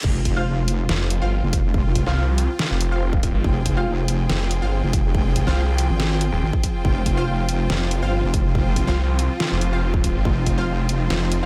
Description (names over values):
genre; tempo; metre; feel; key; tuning
heavy wobble dubstep; 141 BPM; 4/4; half-time; F minor; A4 = 440 Hz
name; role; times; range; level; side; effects
supersaw chords; sustained chords; 0.0-11.5 s; F3 to Ab4; -32 LUFS; equal; sidechain pumping
wobble bass; bass; 0.0-11.1 s; F1 to Ab1; -24 LUFS; equal; chorus, overdrive
dubstep drum kit; drums; 0.0-11.4 s; crash cymbal, hi-hat, snare drum; -29 LUFS; equal; high-pass filter on snare, high-pass filter on hats, high-pass filter on cymbals, high-pass filter on room
electronic kick drum; drums; 0.0-10.6 s; none; -24 LUFS; equal; none
reverse cymbal and impact; sound effects; 0.0-1.7 s; none; barely audible; none; none
clear studio string section; texture; 0.0-11.5 s; F4 to G5; -33 LUFS; equal; sidechain pumping
orchestra-hit-like synth stab; stabs; 0.4-11.5 s; F4 to F5; -33 LUFS; equal; built-in reverb, phaser, dub echo
snarling distorted saw bass; bass; 0.9-11.5 s; Eb1 to C2; -23 LUFS; equal; distortion, overdrive
room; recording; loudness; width
digital ambience; high-pass filter; -21 LUFS; mono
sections
0.0-11.5 A section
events
drop 0.0-11.5; impact 0.0-1.7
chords
0.0 F5